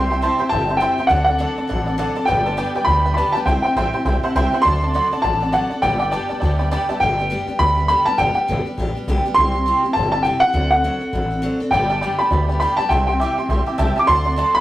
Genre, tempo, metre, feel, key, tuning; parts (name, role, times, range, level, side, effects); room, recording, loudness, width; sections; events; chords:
rockabilly; 204 BPM; 4/4; swing 59% on 8ths; G major; A4 = 440 Hz
warm upright piano; melody; 0.0-14.6 s; F#5 to D6; -18 LUFS; equal
honky-tonk upright piano; accompaniment; 0.0-7.0, 11.7-14.6 s; A4 to D6; -24 LUFS; right 1 dB
picked steel-string acoustic guitar; accompaniment; 0.0-14.6 s; G2 to A4; -25 LUFS; equal
upright bass; bass; 0.0-14.6 s; G1 to D2; -22 LUFS; equal
moderate stone room reverb, RT60 0.9 s; rough rehearsal-room recording; -16 LUFS; side -15 dB against mid
0.0-7.0 A section; 7.0-14.6 A section
honky-tonk piano fill 4.1-4.6, 6.4-7.0
0.0 C; 1.1 D7; 2.3 G; 3.5 C; 4.6 D7; 5.8 G; 9.4 C; 10.5 D7; 11.7 G; 12.9 C; 14.1 D7